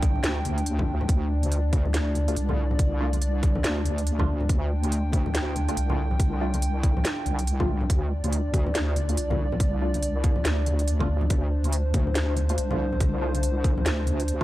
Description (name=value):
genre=deep dubstep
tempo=141 BPM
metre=4/4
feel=swing 60% on 16ths, half-time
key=D minor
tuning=A4 = 440 Hz
part: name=dark analog pad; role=sustained chords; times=0.0-14.4 s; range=D4 to G5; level=-31 LUFS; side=equal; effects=chorus
part: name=wobble bass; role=bass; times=0.0-14.4 s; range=C2 to D2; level=-25 LUFS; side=equal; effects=chorus
part: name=electronic kick drum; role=drums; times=0.0-14.4 s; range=none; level=-24 LUFS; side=equal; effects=none
part: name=garage drum kit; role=drums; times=0.0-14.4 s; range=hi-hat, snare drum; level=-31 LUFS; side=right 1 dB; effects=none
part: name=congas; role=percussion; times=0.0-14.4 s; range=none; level=-33 LUFS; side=left 2 dB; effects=none
part: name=filtered dub chord stab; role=stabs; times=2.3-14.4 s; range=A3 to F4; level=-36 LUFS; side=equal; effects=phaser, lush chorus, dub echo
room=digital ambience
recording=dry, gritty hardware recording, transformer saturation, cassette tape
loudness=-22 LUFS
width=side -16 dB against mid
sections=0.0-14.4 A section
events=none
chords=none